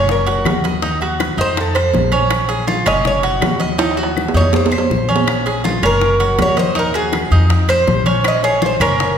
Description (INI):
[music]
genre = latin, Cuban son and guajira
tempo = 162 BPM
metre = 4/4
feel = straight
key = Bb minor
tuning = A4 = 444 Hz
[part]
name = Cuban tres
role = melody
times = 0.0-9.2 s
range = Ab4 to Eb5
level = -19 LUFS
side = equal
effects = none
[part]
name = Cuban tres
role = arpeggios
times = 0.0-9.2 s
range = Db4 to Eb5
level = -19 LUFS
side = right 2 dB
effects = none
[part]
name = upright bass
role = bass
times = 0.0-9.2 s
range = Gb1 to F2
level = -19 LUFS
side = left 1 dB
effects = none
[part]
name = bongos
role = percussion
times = 0.1-9.2 s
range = none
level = -26 LUFS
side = left 6 dB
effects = none
[part]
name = congas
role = percussion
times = 0.1-9.2 s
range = none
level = -24 LUFS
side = left 3 dB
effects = none
[part]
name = timbales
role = percussion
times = 0.3-9.0 s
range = none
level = -22 LUFS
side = right 4 dB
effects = none
[part]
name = claves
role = percussion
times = 0.5-9.0 s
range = none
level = -30 LUFS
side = left 4 dB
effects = none
[sound]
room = wet recital hall reverb, RT60 1.7 s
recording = recorded in a church or concert hall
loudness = -13 LUFS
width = side -8 dB against mid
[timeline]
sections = 0.0-9.2 A section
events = Cuban tres solo 0.0-9.2; drum fill 3.8-5.3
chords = 0.1 Gb; 0.8 Ebmadd9; 1.6 F7; 2.3 Bbm7; 3.1 Gb5; 3.8 Ebmadd9; 4.5 F5; 5.3 Bbm7; 6.0 Gb; 6.8 Ebmadd9; 7.5 F5; 8.3 Bbm7